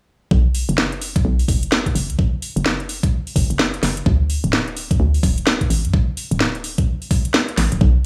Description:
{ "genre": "UK garage, two-step garage", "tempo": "128 BPM", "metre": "4/4", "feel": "swing 61% on 16ths", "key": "B minor", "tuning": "A4 = 440 Hz", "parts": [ { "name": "hollow knocking FM bass", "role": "bass", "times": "0.3-8.1 s", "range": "D1 to F#2", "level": "-22 LUFS", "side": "equal", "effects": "none" }, { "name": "electronic kick drum", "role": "drums", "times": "0.3-7.9 s", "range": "none", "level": "-20 LUFS", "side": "equal", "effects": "studio reverb" }, { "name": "garage drum kit", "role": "drums", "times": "0.5-7.8 s", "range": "hi-hat, snare drum", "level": "-23 LUFS", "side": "equal", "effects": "studio reverb" } ], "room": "digital ambience", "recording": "studio reverb", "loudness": "-19 LUFS", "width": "mono", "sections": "0.3-8.1 A section", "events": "none", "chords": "none" }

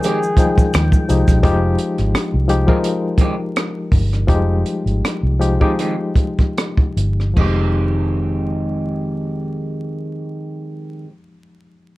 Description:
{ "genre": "R&B, neo-soul", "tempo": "73-86 BPM", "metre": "4/4", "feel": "swing 55% on 16ths", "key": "F minor", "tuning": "A4 = 439 Hz", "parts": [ { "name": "breathy flugelhorn", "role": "melody", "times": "0.0-1.1 s", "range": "Ab4", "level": "-23 LUFS", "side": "left 1 dB", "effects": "none" }, { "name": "electric guitar through a small old amp", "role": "second line", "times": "0.0-11.1 s", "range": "Eb3 to G4", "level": "-23 LUFS", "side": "right 2 dB", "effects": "phaser" }, { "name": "barky reed electric piano", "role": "accompaniment", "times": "0.0-12.0 s", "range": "F3 to G5", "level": "-21 LUFS", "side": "left 2 dB", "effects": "overdrive, fast tremolo" }, { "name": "tonewheel organ", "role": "sustained chords", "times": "0.0-1.4 s", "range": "Eb3 to G5", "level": "-28 LUFS", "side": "right 1 dB", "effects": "slow rotary speaker, overdrive" }, { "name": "compact cocktail drum kit", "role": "drums", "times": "0.0-7.6 s", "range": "crash cymbal, hi-hat, kick drum, rim click", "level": "-16 LUFS", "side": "equal", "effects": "none" }, { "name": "tube shaker and finger snaps", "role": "percussion", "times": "0.0-1.4 s", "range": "none", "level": "-34 LUFS", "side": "right 3 dB", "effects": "none" }, { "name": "vintage muted fingered electric bass", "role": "bass", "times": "0.7-11.0 s", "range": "F1 to Eb2", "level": "-18 LUFS", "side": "equal", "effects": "none" } ], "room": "light reverb", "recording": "dark, warm production, vinyl crackle", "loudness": "-15 LUFS", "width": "side -18 dB against mid", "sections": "0.0-1.4 A section; 1.4-7.4 B section; 7.4-10.7 C section", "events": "slowing down 1.4-7.4", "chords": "0.0 Fm9" }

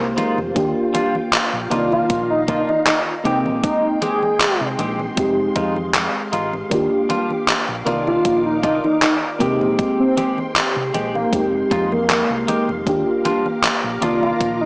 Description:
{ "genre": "vaporwave", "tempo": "78 BPM", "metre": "4/4", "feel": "swing 54% on 16ths", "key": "F dorian", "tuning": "A4 = 441 Hz", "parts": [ { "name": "warm velvety synth lead", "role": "melody", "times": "0.0-14.7 s", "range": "Bb3 to Ab4", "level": "-21 LUFS", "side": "equal", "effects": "chorus, tape echo" }, { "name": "mellow FM electric piano", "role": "accompaniment", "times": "0.0-14.7 s", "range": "Eb3 to G5", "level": "-21 LUFS", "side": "equal", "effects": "ensemble chorus, tape echo" }, { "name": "soft string machine", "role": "sustained chords", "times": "0.0-14.7 s", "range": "Ab3 to D6", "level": "-30 LUFS", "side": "equal", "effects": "ensemble chorus" }, { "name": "hollow-body short-scale fingered electric bass", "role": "bass", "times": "0.0-14.7 s", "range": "F1 to C3", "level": "-29 LUFS", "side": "equal", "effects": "tube saturation" }, { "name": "clean electric guitar", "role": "riff", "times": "0.2-14.6 s", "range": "G3 to G4", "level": "-25 LUFS", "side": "equal", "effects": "wide subtle chorus, tape echo" }, { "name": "gated 80s digital drum machine", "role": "drums", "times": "0.2-14.6 s", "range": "congas, handclaps, hi-hat", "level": "-22 LUFS", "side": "equal", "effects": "gated reverb, overdrive" }, { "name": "electronic kick drum", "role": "drums", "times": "0.6-14.6 s", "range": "none", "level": "-25 LUFS", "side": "equal", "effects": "overdrive" } ], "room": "light reverb, digital ambience", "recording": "dry, gritty hardware recording, small speaker sound", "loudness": "-16 LUFS", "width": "side -32 dB against mid", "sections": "0.0-14.7 A section", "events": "none", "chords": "0.0 Fm7; 0.6 Ebmaj9; 1.7 Cm11; 3.3 Abmaj7; 5.2 Fm7; 6.7 Ebmaj9; 7.9 Cm11; 9.4 Abmaj7; 11.3 Fm7; 12.9 Ebmaj9; 14.0 Cm11" }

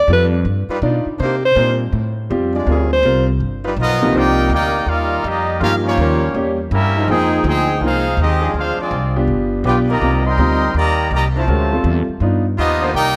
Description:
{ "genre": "jazz, big band swing", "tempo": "164 BPM", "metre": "4/4", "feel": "swing 64% on 8ths", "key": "C minor", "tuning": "A4 = 439 Hz", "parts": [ { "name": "warm alto saxophone", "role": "melody", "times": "0.0-3.3 s", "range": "G4 to C5", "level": "-18 LUFS", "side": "equal", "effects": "none" }, { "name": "upright bass", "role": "bass", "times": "0.0-13.2 s", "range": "G1 to C3", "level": "-21 LUFS", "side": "equal", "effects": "none" }, { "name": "warm concert grand piano", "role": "accompaniment", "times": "0.1-12.4 s", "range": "C3 to G5", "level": "-22 LUFS", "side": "equal", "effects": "none" }, { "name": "bright trombone section", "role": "sustained chords", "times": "0.7-12.9 s", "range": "Eb3 to D5", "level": "-27 LUFS", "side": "equal", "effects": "none" }, { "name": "warm trumpet section", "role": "melody", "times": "3.8-13.2 s", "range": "Bb3 to C6", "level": "-21 LUFS", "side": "equal", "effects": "none" }, { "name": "muted trombone section", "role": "second line", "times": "3.8-13.2 s", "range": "C3 to Ab4", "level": "-25 LUFS", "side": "equal", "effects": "none" } ], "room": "light reverb", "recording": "none", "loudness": "-17 LUFS", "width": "mono", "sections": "0.0-4.1 A section; 4.1-13.2 B section", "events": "alto saxophone solo 0.0-4.1", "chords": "0.5 G7b13; 1.2 Cm9; 1.9 F69; 2.7 Dm7b5; 3.4 G7alt; 4.1 Cm9; 5.6 Gm7b5; 6.3 Edim7; 7.1 Fm9; 8.5 Dm7b5; 9.3 G7; 10.0 Cm9; 11.5 Dm9; 12.2 G7b13" }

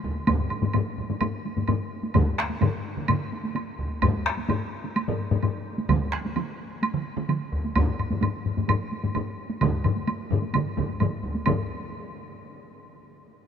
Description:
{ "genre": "japanese traditional, taiko drum ensemble", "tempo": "129 BPM", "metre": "4/4", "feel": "straight", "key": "none", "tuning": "none", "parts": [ { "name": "taiko ensemble", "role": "percussion", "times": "0.0-11.7 s", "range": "none", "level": "-29 LUFS", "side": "equal", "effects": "none" }, { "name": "taiko ensemble", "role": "percussion", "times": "0.3-11.7 s", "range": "none", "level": "-31 LUFS", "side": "right 2 dB", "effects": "none" }, { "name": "taiko ensemble", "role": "percussion", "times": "0.3-11.9 s", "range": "none", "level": "-27 LUFS", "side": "left 4 dB", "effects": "none" }, { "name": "woodblock", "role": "percussion", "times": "0.3-11.7 s", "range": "none", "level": "-33 LUFS", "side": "right 4 dB", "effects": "none" }, { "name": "taiko ensemble", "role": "percussion", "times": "2.1-11.9 s", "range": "none", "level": "-30 LUFS", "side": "right 6 dB", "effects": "none" } ], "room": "moderate huge ambient reverb, RT60 6.3 s", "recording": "minimal, uncompressed stereo recording", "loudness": "-24 LUFS", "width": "side -8 dB against mid", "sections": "0.0-11.5 A section; 11.5-13.3 B section", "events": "none", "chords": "none" }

